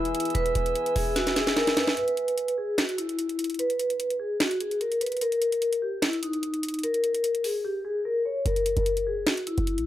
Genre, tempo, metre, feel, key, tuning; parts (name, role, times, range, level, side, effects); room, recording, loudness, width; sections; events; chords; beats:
hip hop, trap; 148 BPM; 4/4; half-time; A4 = 440 Hz
vibraphone with medium hard mallets; melody; 0.0-9.9 s; D#4 to C#5; -26 LUFS; left 1 dB; low-pass filter, ping-pong delay
dark grand piano; accompaniment; 0.0-2.0 s; E3 to G#4; -40 LUFS; right 3 dB
glass harmonica; sustained chords; 0.0-1.9 s; B4 to E6; -32 LUFS; equal
short 808-style bass; bass; 0.0-2.0, 8.5-9.9 s; E1 to E2; -29 LUFS; equal
trap drum kit; drums; 0.1-9.9 s; finger snaps, hi-hat, snare drum; -28 LUFS; right 1 dB
little or no reverb; -24 LUFS; side -13 dB against mid
0.0-2.0 A section; 2.0-9.9 B section
drum fill 1.2-2.0; break 2.0-8.5
0.0 E; 2.0 N.C.; 8.5 F#7
| 0.35 0.75 1.16 1.56 | 1.97 2.38 2.78 3.19 | 3.59 4.00 4.40 4.81 | 5.21 5.62 6.03 6.43 | 6.83 7.24 7.65 8.05 | 8.46 8.86 9.27 9.67